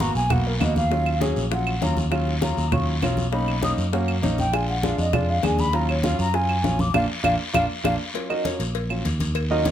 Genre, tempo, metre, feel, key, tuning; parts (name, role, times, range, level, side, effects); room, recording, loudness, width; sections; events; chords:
Afro-Cuban jazz; 199 BPM; 4/4; straight; Eb minor; A4 = 436 Hz
breathy mellow concert flute; melody; 0.0-7.9 s; Bb4 to D#6; -26 LUFS; equal; slapback echo, plate reverb
warm baby grand piano; accompaniment; 0.0-9.7 s; Gb3 to Eb5; -26 LUFS; right 1 dB
fingered electric bass; bass; 0.0-9.7 s; Bb1 to F#2; -24 LUFS; equal
bongos and cowbell; percussion; 0.0-9.7 s; -32 LUFS; left 11 dB
congas; percussion; 0.0-9.7 s; -28 LUFS; equal
guiro; percussion; 0.0-9.7 s; -34 LUFS; left 3 dB
claves; percussion; 0.3-9.5 s; -31 LUFS; right 6 dB
moderate studio reverb, RT60 0.6 s; -20 LUFS; side -10 dB against mid
0.0-8.2 A section; 8.2-9.7 A section
flute solo 0.0-8.2; band accent 6.9-8.2; drum fill 7.5-8.2; grand piano solo 8.2-9.7
0.0 Abm9 (rootless); 0.9 Ebm9; 3.3 Bmaj7; 4.5 Bb7; 5.7 Ebm9; 6.9 Bb; 8.2 Ebm9